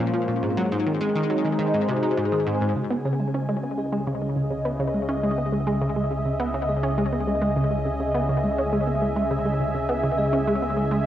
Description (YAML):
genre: ambient, sequencer-driven space music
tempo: 103 BPM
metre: 4/4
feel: straight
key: C# minor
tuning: A4 = 440 Hz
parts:
  - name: sweeping resonant pad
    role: sustained chords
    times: 0.0-11.1 s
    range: C#3 to Ab5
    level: -25 LUFS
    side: right 1 dB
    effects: chorus, cassette tape
  - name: vibraphone with soft mallets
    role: arpeggios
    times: 0.0-11.0 s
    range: Ab3 to C5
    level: -32 LUFS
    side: left 6 dB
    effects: auto-pan, cassette tape, ping-pong delay
  - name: analog pluck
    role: riff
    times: 0.0-11.1 s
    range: Ab2 to Eb4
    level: -25 LUFS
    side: equal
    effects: chorus, cassette tape, ping-pong delay
  - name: round analog bass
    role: bass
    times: 2.8-11.1 s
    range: C#2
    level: -34 LUFS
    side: right 1 dB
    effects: none
room: wet spring reverb, RT60 1.3 s, digital ambience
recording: home recording on cassette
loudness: -22 LUFS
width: side -11 dB against mid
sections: 0.0-2.8 A section; 2.8-11.1 B section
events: fade-in on vibraphone 2.8-11.1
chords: 0.4 Ab7; 2.8 C#m